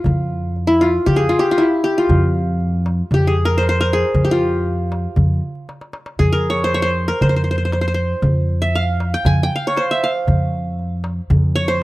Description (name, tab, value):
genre	Arabic maqam ensemble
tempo	117 BPM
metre	4/4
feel	straight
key	F maqam nahawand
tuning	A4 = 440 Hz
part	qanun	melody	0.0-11.8 s	E4 to Ab5	-18 LUFS	equal	none
part	darbuka	percussion	0.0-11.4 s	none	-20 LUFS	equal	none
part	upright bass	bass	0.1-11.8 s	F2	-19 LUFS	equal	none
room	small room ambience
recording	dry, close 1970s-style studio recording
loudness	-15 LUFS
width	side -18 dB against mid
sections	0.0-11.8 A section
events	drum fill 5.7-6.2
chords	none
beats	| 0.05 0.56 1.08 1.59 | 2.10 2.61 3.12 3.63 | 4.14 4.66 5.17 5.68 | 6.19 6.70 7.21 7.72 | 8.23 8.75 9.26 9.77 | 10.28 10.79 11.30 11.82